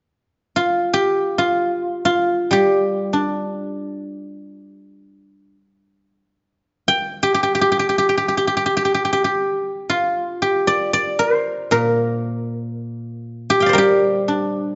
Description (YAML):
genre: chinese traditional, Chinese solo plucked strings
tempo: free time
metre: none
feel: none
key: G yu mode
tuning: A4 = 441 Hz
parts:
  - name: guzheng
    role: solo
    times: 0.6-14.8 s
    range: Bb2 to G5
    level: -19 LUFS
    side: equal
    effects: none
room: moderate recital hall reverb, RT60 1.6 s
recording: nothing above 7.6 kHz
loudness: -19 LUFS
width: mono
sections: 0.0-9.9 A section; 9.9-14.8 B section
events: none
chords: none